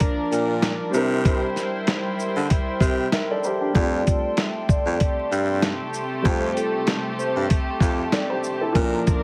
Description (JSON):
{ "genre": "hip hop, boom-bap hip-hop", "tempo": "96 BPM", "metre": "4/4", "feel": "swing 54% on 16ths", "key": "F major", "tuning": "A4 = 438 Hz", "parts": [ { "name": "warm concert grand piano", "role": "accompaniment", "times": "0.0-9.2 s", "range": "F3 to E5", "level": "-30 LUFS", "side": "equal", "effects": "cassette tape, high-pass filter, low-pass filter" }, { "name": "hollow soft pad", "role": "sustained chords", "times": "0.0-9.2 s", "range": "A4 to D6", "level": "-36 LUFS", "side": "equal", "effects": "chorus, high-pass filter, low-pass filter" }, { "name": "warm studio string section", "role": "stabs", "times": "0.0-9.2 s", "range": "C3 to C5", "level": "-31 LUFS", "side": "equal", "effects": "high-pass filter, low-pass filter, delay" }, { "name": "dusty soul sampler-style drum kit", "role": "drums", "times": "0.0-9.2 s", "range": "hi-hat, kick drum, shaker, snare drum", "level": "-25 LUFS", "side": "equal", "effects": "none" }, { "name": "growling baritone saxophone", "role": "bass", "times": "0.3-9.0 s", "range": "F2 to D3", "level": "-26 LUFS", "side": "equal", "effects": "none" }, { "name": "vibraphone with soft mallets", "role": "melody", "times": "3.8-7.3 s", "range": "A4 to D5", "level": "-30 LUFS", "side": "equal", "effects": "high-pass filter, low-pass filter" } ], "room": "light reverb, small room ambience", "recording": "heavily compressed radio sound, vinyl crackle", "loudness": "-23 LUFS", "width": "mono", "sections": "0.0-9.2 A section", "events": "none", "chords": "0.0 Bb; 0.9 C7; 3.8 Fadd9" }